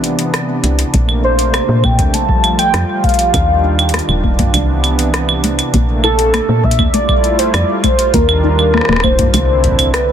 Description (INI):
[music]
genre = IDM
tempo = 100 BPM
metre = 4/4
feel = straight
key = Bb lydian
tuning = A4 = 440 Hz
[part]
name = warm analog pad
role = sustained chords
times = 0.0-10.1 s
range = C3 to F4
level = -19 LUFS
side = right 1 dB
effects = chorus, vintage 12-bit sampler grit, sidechain pumping
[part]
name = booming analog drum machine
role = drums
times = 0.0-10.1 s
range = claves, hi-hat, rim click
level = -19 LUFS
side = right 1 dB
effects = soft clipping on snare
[part]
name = deep acid bass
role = arpeggios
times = 0.6-9.4 s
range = A3 to E4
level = -21 LUFS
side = left 4 dB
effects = analog chorus, cassette tape, ping-pong delay
[part]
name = woody FM bass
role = bass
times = 0.6-10.1 s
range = Eb1 to Bb2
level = -16 LUFS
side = equal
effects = none
[part]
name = electronic kick drum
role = drums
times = 0.9-9.9 s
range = none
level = -16 LUFS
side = equal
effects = none
[part]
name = warm velvety synth lead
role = melody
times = 1.2-10.1 s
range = A4 to A5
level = -16 LUFS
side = equal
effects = chorus, ping-pong delay
[sound]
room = little or no reverb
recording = dense, heavily limited modern master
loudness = -11 LUFS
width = side -9 dB against mid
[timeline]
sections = 0.0-10.1 A section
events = filter sweep on acid bass 0.0-10.1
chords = 0.0 Cmaj9; 0.9 Bbmaj9; 2.1 Fadd9; 3.3 Ebmaj9; 4.5 Cmaj9; 5.7 Bbmaj9; 6.9 Fmaj9; 8.1 Ebmaj9; 9.3 Cmaj9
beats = 0.34 | 0.94 1.54 2.14 2.74 | 3.34 3.94 4.54 5.14 | 5.74 6.34 6.94 7.54 | 8.14 8.74 9.34 9.94